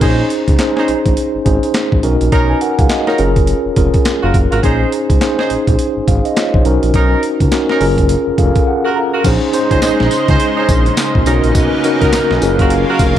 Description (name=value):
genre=R&B, new jack swing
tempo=104 BPM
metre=4/4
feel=swing 61% on 16ths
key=Bb minor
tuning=A4 = 440 Hz
part: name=mellow tine electric piano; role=accompaniment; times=0.0-13.2 s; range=Db4 to A#5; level=-15 LUFS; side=equal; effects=fast stereo tremolo
part: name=warm horn section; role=stabs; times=0.0-13.0 s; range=Db4 to C5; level=-20 LUFS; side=right 2 dB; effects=none
part: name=smooth synth bass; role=bass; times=0.0-13.2 s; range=F1 to Db2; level=-16 LUFS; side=equal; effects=none
part: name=breakbeat sampler-style drum kit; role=drums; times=0.0-13.2 s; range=crash cymbal, handclaps, hi-hat, kick drum, snare drum, tambourine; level=-16 LUFS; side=equal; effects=none
part: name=lush unison pad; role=sustained chords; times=9.2-13.2 s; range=Db3 to C5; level=-18 LUFS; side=equal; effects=chorus
room=light reverb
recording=dark, warm production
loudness=-11 LUFS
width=side -11 dB against mid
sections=0.0-9.2 A section; 9.2-13.2 B section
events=tine electric piano fill 8.1-9.2; break 8.7-9.2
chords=0.0 Bbm11; 2.0 Bmaj9; 3.2 Gbmaj7; 4.6 Bbm11; 6.6 Bmaj9; 7.8 Gbmaj7; 9.2 Bbm11; 11.3 Bmaj9; 12.4 Gbmaj7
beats=| 0.01 0.59 1.17 1.74 | 2.32 2.90 3.48 4.05 | 4.63 5.21 5.78 6.36 | 6.94 7.51 8.09 8.67 | 9.24 9.82 10.40 10.97 | 11.55 12.13 12.71